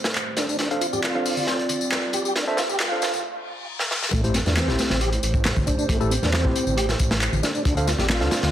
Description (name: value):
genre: breakbeat, breaks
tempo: 136 BPM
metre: 4/4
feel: straight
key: A minor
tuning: A4 = 440 Hz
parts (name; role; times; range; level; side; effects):
- dark analog pad; sustained chords; 0.0-8.5 s; A3 to D5; -30 LUFS; right 2 dB; chorus, vintage 12-bit sampler grit, sidechain pumping
- crunchy breakbeat drum kit; drums; 0.0-8.5 s; hi-hat, kick drum, snare drum; -25 LUFS; equal; high-pass filter on kick, high-pass filter on hats, high-pass filter on snare, high-pass filter on room
- electronic tambourine and handclaps; drums; 0.0-8.5 s; none; -29 LUFS; left 2 dB; none
- riser, reverse cymbal and sub drop; sound effects; 0.3-5.9 s; none; -36 LUFS; left 1 dB; none
- mellow tonewheel organ; riff; 0.4-8.5 s; A3 to C5; -28 LUFS; equal; chorus vibrato, fast rotary speaker, dub echo
- tine electric piano; stabs; 0.7-8.4 s; A3 to F5; -30 LUFS; equal; fast stereo tremolo, low-pass filter, dub echo
- congas; percussion; 0.9-8.5 s; none; -33 LUFS; left 1 dB; none
- detuned saw bass; bass; 4.1-8.5 s; A1 to E2; -24 LUFS; equal; none
room: light reverb, studio reverb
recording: dense, heavily limited modern master, vinyl crackle, high-pass filter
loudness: -20 LUFS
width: side -11 dB against mid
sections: 0.0-4.1 A section; 4.1-8.5 B section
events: build-up 0.0-4.1; drum fill 0.6-3.2, 3.8-4.1; break 3.2-4.1; reverse cymbal 3.2-4.1; drop 4.1-8.5; impact 4.1-5.9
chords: 0.0 Am7; 0.6 Dm7; 4.1 Am7; 7.7 Dm7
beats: 0.15 | 0.59 1.04 1.48 1.92 | 2.36 2.80 3.24 3.68 | 4.12 4.57 5.01 5.45 | 5.89 6.33 6.77 7.21 | 7.65 8.10